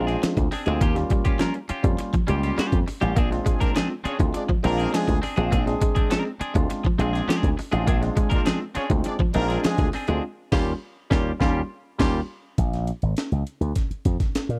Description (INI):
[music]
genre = funk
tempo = 102 BPM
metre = 4/4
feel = straight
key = Bb mixolydian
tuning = A4 = 442 Hz
[part]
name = semi-hollow electric guitar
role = accompaniment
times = 0.0-12.2 s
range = C4 to Bb4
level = -33 LUFS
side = equal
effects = subtle chorus
[part]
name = direct-recorded clean electric guitar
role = riff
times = 0.0-10.2 s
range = F3 to Bb3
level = -32 LUFS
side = equal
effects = subtle chorus
[part]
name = barky tine electric piano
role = stabs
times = 0.0-12.2 s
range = G3 to Ab4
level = -31 LUFS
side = equal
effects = phaser
[part]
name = slap bass with an envelope filter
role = bass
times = 0.0-14.6 s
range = Ab1 to Bb2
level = -26 LUFS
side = equal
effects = none
[part]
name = breakbeat sampler-style drum kit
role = drums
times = 0.1-14.6 s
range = crash cymbal, hi-hat, kick drum, snare drum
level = -26 LUFS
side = equal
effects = none
[part]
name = warm horn section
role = second line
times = 3.5-9.9 s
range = Ab3 to D5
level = -32 LUFS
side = equal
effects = none
[sound]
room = digital ambience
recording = dry, close 1970s-style studio recording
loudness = -24 LUFS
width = mono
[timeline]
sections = 0.0-12.6 A section; 12.6-14.6 B section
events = band accent 10.2-12.6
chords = 0.0 Bb9; 0.8 Eb9 (rootless); 3.2 Bb9; 10.2 Eb9; 12.6 Bb5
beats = 0.23 | 0.81 1.40 1.99 2.58 | 3.17 3.76 4.34 4.93 | 5.52 6.11 6.70 7.29 | 7.88 8.46 9.05 9.64 | 10.23 10.81 11.40 11.99 | 12.58 13.17 13.76 14.35